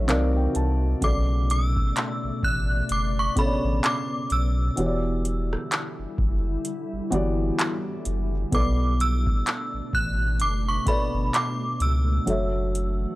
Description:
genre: contemporary R&B.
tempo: 64 BPM.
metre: 4/4.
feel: swing 58% on 16ths.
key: B minor.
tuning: A4 = 439 Hz.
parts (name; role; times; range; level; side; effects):
felt-muted upright piano; accompaniment; 0.0-13.2 s; B2 to A5; -28 LUFS; equal; none.
glassy FM pad; sustained chords; 0.0-13.2 s; B2 to D5; -33 LUFS; left 1 dB; ensemble chorus, built-in reverb.
warm sub bass; bass; 0.0-13.1 s; E1 to C#2; -24 LUFS; equal; none.
booming analog drum machine; drums; 0.1-13.0 s; handclaps, hi-hat, kick drum, rim click; -26 LUFS; equal; none.
synth chime; melody; 1.0-13.2 s; B5 to F#6; -28 LUFS; right 1 dB; ensemble chorus.
room: digital ambience.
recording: dry, gritty hardware recording.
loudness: -22 LUFS.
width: side -18 dB against mid.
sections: 0.0-13.2 A section.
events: felt piano fill 0.0-1.0; kick muted 6.6-8.5.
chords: 0.1 Cm7; 1.0 Bm7; 4.8 Em7; 8.5 Bm7; 12.3 F#m7.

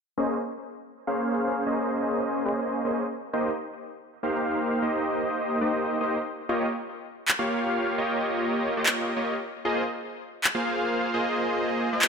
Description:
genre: future bass.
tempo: 152 BPM.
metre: 4/4.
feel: swing 55% on 16ths, half-time.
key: Bb dorian.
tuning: A4 = 442 Hz.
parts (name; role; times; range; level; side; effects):
supersaw chords; riff; 0.2-12.1 s; Bb3 to F5; -25 LUFS; equal; low-pass filter, ping-pong delay.
electronic handclaps; drums; 7.3-12.1 s; none; -24 LUFS; equal; studio reverb.
room: moderate lush hall reverb, RT60 2.0 s.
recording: none.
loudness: -25 LUFS.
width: side -5 dB against mid.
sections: 0.2-12.1 A section.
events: filter sweep on supersaw synth 0.2-12.1.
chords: 0.2 Bbm11; 3.1 Cm7; 6.5 Eb9; 9.6 Ab69.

